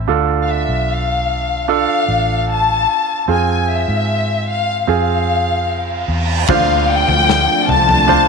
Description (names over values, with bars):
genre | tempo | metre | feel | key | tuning
pop ballad | 75 BPM | 4/4 | straight | unclear | A4 = 440 Hz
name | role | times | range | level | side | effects
bright concert grand piano | accompaniment | 0.0-8.3 s | D3 to C5 | -19 LUFS | right 12 dB | none
vintage muted fingered electric bass | bass | 0.0-8.3 s | A1 to Ab2 | -20 LUFS | left 1 dB | none
warm studio violin section | melody | 0.4-8.3 s | E5 to A5 | -16 LUFS | left 5 dB | slapback echo
reverse cymbal and downlifter | sound effects | 5.8-8.3 s | none | -25 LUFS | right 3 dB | none
lush unison pad | sustained chords | 6.5-8.3 s | F3 to F4 | -20 LUFS | right 2 dB | chorus, phaser
modern studio drum kit | drums | 6.5-8.3 s | crash cymbal, kick drum, snare drum, toms | -20 LUFS | left 7 dB | none
room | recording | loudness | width
light reverb, small room ambience | 1960s-style stereo with parts hard left and right | -13 LUFS | side -4 dB against mid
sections
0.0-6.5 A section; 6.5-8.3 B section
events
reverse cymbal 5.8-6.5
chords
0.1 Dm; 3.3 Fm; 6.5 Dm7